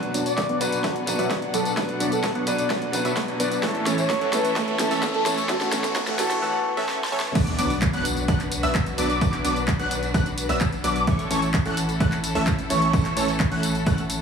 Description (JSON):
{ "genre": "EDM, festival progressive house", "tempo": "129 BPM", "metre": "4/4", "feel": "straight", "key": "B minor", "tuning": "A4 = 440 Hz", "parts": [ { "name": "bright grand piano", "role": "accompaniment", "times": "0.0-7.4 s", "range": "E3 to B4", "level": "-28 LUFS", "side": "equal", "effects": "vintage 12-bit sampler grit, sidechain pumping, dub echo" }, { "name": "warm studio string section", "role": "sustained chords", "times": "0.0-14.2 s", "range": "A2 to F#5", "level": "-32 LUFS", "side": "left 1 dB", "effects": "sidechain pumping" }, { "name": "supersaw stab", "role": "riff", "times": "0.0-14.0 s", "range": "E3 to F#5", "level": "-27 LUFS", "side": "right 1 dB", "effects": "cassette tape, sidechain pumping, low-pass filter, dub echo" }, { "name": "big-room dance drum kit", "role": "drums", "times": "0.0-14.2 s", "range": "crash cymbal, handclaps, hi-hat, snare drum, tambourine", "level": "-29 LUFS", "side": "equal", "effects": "overdrive, high-pass filter on hats, small room ambience, high-pass filter on snare, high-pass filter on perc, high-pass filter on cymbals" }, { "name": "riser, swell and impact", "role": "sound effects", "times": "0.0-9.2 s", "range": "none", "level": "-34 LUFS", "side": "equal", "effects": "none" }, { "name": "breathy flute-like synth lead", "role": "melody", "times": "0.3-6.4 s", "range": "F#4 to D5", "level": "-29 LUFS", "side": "equal", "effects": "analog chorus, cassette tape, dub echo" }, { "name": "electronic kick drum", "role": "drums", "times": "0.4-14.0 s", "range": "none", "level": "-26 LUFS", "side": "equal", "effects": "overdrive, high-pass filter on kick, small room ambience, high-pass filter on room" }, { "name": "plucky unison lead", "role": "arpeggios", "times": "7.4-14.0 s", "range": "C#6 to F#6", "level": "-29 LUFS", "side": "equal", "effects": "ensemble chorus, sidechain pumping, dub echo" }, { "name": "saturated sub bass", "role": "bass", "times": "7.4-14.2 s", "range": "A1 to B1", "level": "-30 LUFS", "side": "equal", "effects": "sidechain pumping" } ], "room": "moderate lush hall reverb, RT60 2.2 s", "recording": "heavily compressed radio sound, high-pass filter, small room ambience", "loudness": "-21 LUFS", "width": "side -6 dB against mid", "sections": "0.0-7.4 A section; 7.4-14.2 B section", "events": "build-up 0.0-7.4; drum fill 0.0-6.4, 6.9-7.4; riser 0.0-6.4; filter sweep on supersaw synth 0.0-7.4; swell 6.4-7.4; drop 7.4-14.2; impact 7.4-9.2", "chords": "0.0 Bm; 3.6 A; 7.4 Bm; 11.1 A" }